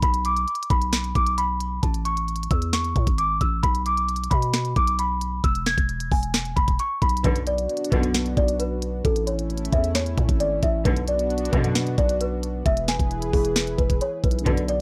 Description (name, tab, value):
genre	hip hop, trap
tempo	133 BPM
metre	4/4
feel	half-time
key	B dorian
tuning	A4 = 440 Hz
part	worn celesta	melody	0.0-14.8 s	G#4 to G#6	-28 LUFS	equal	tape echo
part	growling 808-style bass	bass	0.0-14.8 s	E1 to B2	-30 LUFS	equal	none
part	trap drum kit	drums	0.0-14.8 s	hi-hat, kick drum, snare drum	-26 LUFS	equal	none
part	warm analog pad	sustained chords	7.2-14.8 s	E3 to B4	-34 LUFS	equal	chorus
part	rich symphonic string section	stabs	7.2-14.6 s	F#2 to D3	-31 LUFS	equal	none
part	dark concert grand piano	accompaniment	14.4-14.8 s	D3 to D5	-32 LUFS	equal	none
room	studio ambience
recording	dry, gritty hardware recording, cassette tape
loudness	-23 LUFS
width	mono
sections	0.0-7.2 A section; 7.2-14.8 B section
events	none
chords	0.0 Bm; 1.8 A; 3.6 Bm; 5.4 E; 7.2 Bm; 9.0 A; 10.9 Bm; 12.7 E